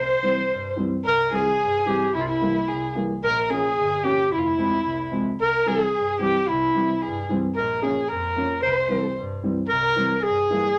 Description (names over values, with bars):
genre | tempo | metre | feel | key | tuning
klezmer | 111 BPM | 2/4 | straight | C phrygian dominant | A4 = 438 Hz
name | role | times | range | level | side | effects
breathy clarinet | melody | 0.0-10.8 s | E4 to C5 | -25 LUFS | equal | none
dark violin | second line | 0.0-10.8 s | E4 to C5 | -29 LUFS | equal | none
rich double bass | bass | 0.0-10.6 s | F1 to G2 | -37 LUFS | equal | none
dark upright piano | accompaniment | 0.2-10.6 s | E3 to Db4 | -29 LUFS | equal | none
room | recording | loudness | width
moderate studio reverb, RT60 0.5 s | none | -23 LUFS | mono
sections
0.0-1.1 A section; 1.1-9.7 B section; 9.7-10.8 B section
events
none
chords
0.0 C; 3.2 Bbm; 4.3 Fm; 5.4 C; 7.6 Bbm; 8.6 C